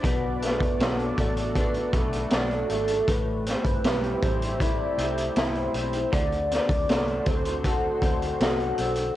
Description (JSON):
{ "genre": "indie pop, bedroom pop", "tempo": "79 BPM", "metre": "4/4", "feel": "straight", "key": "unclear", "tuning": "A4 = 439 Hz", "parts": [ { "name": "warm velvety synth lead", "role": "melody", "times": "0.0-9.2 s", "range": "A4 to D5", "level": "-30 LUFS", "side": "equal", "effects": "lush chorus, cassette tape, tape echo, plate reverb" }, { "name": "electric guitar through a small old amp", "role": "accompaniment", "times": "0.0-9.2 s", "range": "A2 to F#4", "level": "-29 LUFS", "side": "left 2 dB", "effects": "lush chorus, vibrato effect, plate reverb" }, { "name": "lush unison pad", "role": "sustained chords", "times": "0.0-9.1 s", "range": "D3 to D5", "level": "-35 LUFS", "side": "right 1 dB", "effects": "chorus, plate reverb" }, { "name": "vintage muted fingered electric bass", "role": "bass", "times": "0.0-9.1 s", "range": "G1 to D2", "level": "-33 LUFS", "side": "equal", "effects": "none" }, { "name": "raw garage drum kit", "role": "drums", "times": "0.0-9.1 s", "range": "hi-hat, kick drum, snare drum", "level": "-26 LUFS", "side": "equal", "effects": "cassette tape" } ], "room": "moderate studio reverb, RT60 0.6 s", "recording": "home recording on cassette", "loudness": "-23 LUFS", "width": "side -13 dB against mid", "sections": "0.0-9.2 A section", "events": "none", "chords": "0.0 Bm7; 3.1 Am7; 6.1 D7", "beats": "| 0.04 0.80 1.56 2.32 | 3.08 3.84 4.60 5.36 | 6.12 6.88 7.64 8.40 | 9.16" }